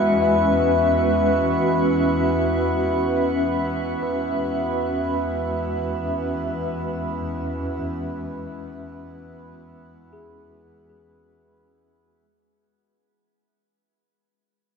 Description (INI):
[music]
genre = ambient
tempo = free time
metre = none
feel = none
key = E major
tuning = A4 = 440 Hz
[part]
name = warbly tape-like pad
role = sustained chords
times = 0.0-12.2 s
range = G#3 to E5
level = -23 LUFS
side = right 1 dB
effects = chorus, built-in reverb, tremolo, shimmer reverb
[part]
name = overdriven tine electric piano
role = arpeggios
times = 0.0-12.6 s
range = G#4 to E5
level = -28 LUFS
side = left 4 dB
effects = phaser, ping-pong delay, shimmer reverb
[part]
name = rich studio double bass section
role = bass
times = 0.0-12.1 s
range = E2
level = -30 LUFS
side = equal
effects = none
[part]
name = pedal harmonium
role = drone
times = 0.0-12.3 s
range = E3 to B3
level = -28 LUFS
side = right 1 dB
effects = none
[part]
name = drifting glass-harmonics texture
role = texture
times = 0.0-12.2 s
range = F#4 to F#5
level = -35 LUFS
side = equal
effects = chorus, built-in reverb, shimmer reverb
[sound]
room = wet huge ambient reverb, RT60 8.4 s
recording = none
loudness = -20 LUFS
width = side -6 dB against mid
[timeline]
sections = 0.0-12.2 A section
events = fade-out on synth texture 0.0-12.2; fade-out 1.3-12.2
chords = 0.0 Bsus2/E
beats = free time